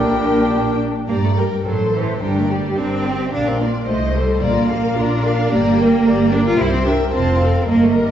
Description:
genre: quick classical-period movement for symphony orchestra.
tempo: 108 BPM.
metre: 2/4.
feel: rubato.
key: G minor.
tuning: A4 = 440 Hz.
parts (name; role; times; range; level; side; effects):
warm chamber violin section; melody; 0.0-8.1 s; A4 to Bb5; -28 LUFS; left 3 dB; none.
hollow concert flute; second line; 0.0-0.8 s; Bb4; -23 LUFS; equal; none.
warm chamber violin section; second line; 0.0-8.1 s; D4 to F5; -25 LUFS; left 2 dB; none.
warm clarinet; second line; 0.0-0.8 s; none; barely audible; none; none.
warm oboe; second line; 0.0-0.8 s; D5; -29 LUFS; left 2 dB; none.
mellow bassoon; accompaniment; 0.0-0.8 s; G3; -30 LUFS; right 1 dB; none.
warm symphonic viola section; accompaniment; 0.0-8.1 s; Bb3 to C5; -22 LUFS; left 1 dB; none.
mellow French horn section; sustained chords; 0.0-0.8 s; Bb3 to D4; -26 LUFS; equal; none.
clear chamber cello section; bass; 0.0-8.1 s; Bb2 to F4; -19 LUFS; right 2 dB; none.
rich chamber double bass section; bass; 0.0-8.1 s; F1 to G2; -21 LUFS; right 2 dB; none.
timpani; percussion; 4.4-5.2 s; Bb2; -28 LUFS; left 3 dB; none.
room: wet scoring stage reverb, RT60 1.6 s.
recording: heard from further back in the room, nothing above 7.6 kHz.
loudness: -15 LUFS.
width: side -10 dB against mid.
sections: 0.0-1.1 A section; 1.1-8.1 A section.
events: none.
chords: 0.0 Gm/Bb; 1.1 Gm; 1.6 F#dim/A; 2.2 Gm; 3.3 Bb; 3.9 Adim/C; 4.4 Bb; 5.5 Gm; 6.6 C7; 7.1 F.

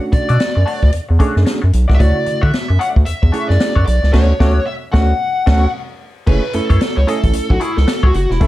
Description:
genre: funk.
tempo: 112 BPM.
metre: 4/4.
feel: swing 60% on 16ths.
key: F# minor.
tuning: A4 = 441 Hz.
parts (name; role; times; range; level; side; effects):
semi-hollow electric guitar; accompaniment; 0.0-8.5 s; A3 to D#5; -26 LUFS; left 4 dB; wah.
bright reed electric piano; stabs; 0.0-8.5 s; C#3 to B4; -21 LUFS; right 3 dB; fast tremolo.
fuzz lead guitar; melody; 0.1-8.5 s; E4 to F#5; -20 LUFS; left 1 dB; distortion, slapback echo.
round analog bass; bass; 0.1-8.5 s; E1 to D3; -13 LUFS; equal; none.
swinging big-band drum kit; drums; 0.1-8.5 s; crash cymbal, hi-hat, kick drum, snare drum; -17 LUFS; equal; none.
room: studio ambience.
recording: dark, warm production.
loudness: -12 LUFS.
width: side -16 dB against mid.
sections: 0.0-6.3 A section; 6.3-8.5 B section.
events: band accent 4.1-6.3; lead electric guitar solo 6.3-8.5.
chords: 0.0 Bm9; 6.3 F#m9.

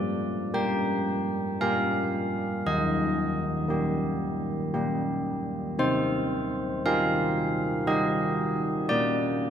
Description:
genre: classical, tune for church bells.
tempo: 58 BPM.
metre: 3/4.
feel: straight.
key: G minor.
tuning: A4 = 440 Hz.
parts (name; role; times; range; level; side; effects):
carillon bells; solo; 0.0-9.5 s; Eb3 to G5; -25 LUFS; equal; none.
room: wet cathedral reverb, RT60 4.8 s.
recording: minimal, uncompressed stereo recording.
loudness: -25 LUFS.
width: side -8 dB against mid.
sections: 0.0-9.5 A section.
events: none.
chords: 0.0 Gm; 2.7 Eb; 5.8 Cm; 8.9 Gm/Bb (rootless).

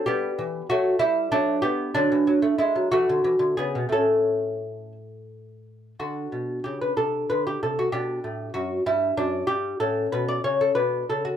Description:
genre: classical, baroque-style dance for lute.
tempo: 57-66 BPM (dotted quarters).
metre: 6/8.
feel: rubato.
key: A major, D major from 6.0 s.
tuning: A4 = 440 Hz.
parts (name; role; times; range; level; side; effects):
lute; solo; 0.0-11.4 s; F#2 to D5; -22 LUFS; equal; none.
room: light reverb.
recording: none.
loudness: -22 LUFS.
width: side -9 dB against mid.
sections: 0.0-6.0 A section; 6.0-11.4 A section.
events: none.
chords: 0.1 G; 2.0 D; 2.9 E5; 3.9 A; 6.0 D; 7.0 Am11/C; 7.9 G; 9.8 A; 10.8 Bm9.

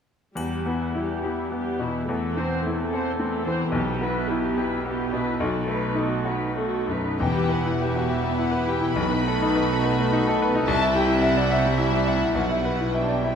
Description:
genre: classical, romantic movement for piano and orchestra.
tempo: 91-111 BPM.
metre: 3/4.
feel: rubato.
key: E minor.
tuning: A4 = 440 Hz.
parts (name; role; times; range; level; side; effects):
bright grand piano; melody; 0.4-13.4 s; B1 to E5; -24 LUFS; left 2 dB; none.
warm studio viola section; accompaniment; 0.4-13.4 s; G3 to C5; -29 LUFS; right 2 dB; none.
warm studio cello section; bass; 0.4-13.4 s; E2 to C3; -31 LUFS; right 4 dB; none.
triangle; percussion; 0.4-1.5 s; none; -44 LUFS; left 2 dB; none.
dark studio violin section; melody; 7.2-13.4 s; E5 to B5; -30 LUFS; left 4 dB; none.
clear studio violin section; second line; 7.2-13.4 s; C4 to E5; -31 LUFS; left 2 dB; none.
rich studio double bass section; bass; 7.2-13.4 s; E1 to C2; -31 LUFS; right 6 dB; none.
timpani; percussion; 7.2-9.8 s; E2 to B2; -32 LUFS; left 1 dB; none.
room: moderate concert hall reverb, RT60 2.1 s.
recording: none.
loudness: -21 LUFS.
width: side -7 dB against mid.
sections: 0.4-7.2 A section; 7.2-13.4 B section.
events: none.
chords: 0.4 Em; 2.1 Am/E; 3.7 Em/B; 5.4 B7; 7.2 Em; 9.0 B7; 10.7 C; 12.3 Em/B.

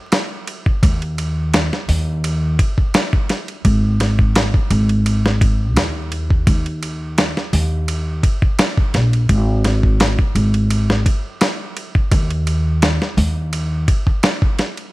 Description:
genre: trip hop.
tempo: 85 BPM.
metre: 4/4.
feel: swing 53% on 16ths.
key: unclear.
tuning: A4 = 441 Hz.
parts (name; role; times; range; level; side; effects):
dusty soul sampler-style drum kit; drums; 0.1-14.9 s; hi-hat, kick drum, ride cymbal, snare drum; -17 LUFS; equal; none.
upright bass; bass; 0.8-13.8 s; Ab1 to Eb2; -17 LUFS; equal; none.
room: digital ambience.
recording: vinyl crackle.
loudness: -15 LUFS.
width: side -20 dB against mid.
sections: 0.0-14.9 A section.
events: none.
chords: none.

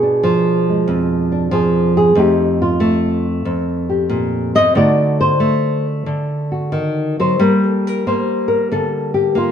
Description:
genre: solo jazz.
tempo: 92 BPM.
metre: 4/4.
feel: swing 68% on 8ths, rubato.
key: F mixolydian.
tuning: A4 = 440 Hz.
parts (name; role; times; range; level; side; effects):
flamenco guitar; solo; 0.0-9.5 s; F2 to Eb5; -14 LUFS; equal; none.
room: wet stone room reverb, RT60 1.1 s.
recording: band playing live in one room.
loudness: -14 LUFS.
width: side -8 dB against mid.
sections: 0.0-9.5 A section.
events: nylon-string guitar solo 0.0-9.5.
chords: 0.0 Bdim7; 2.2 F9; 4.7 D7b9; 7.4 Gm.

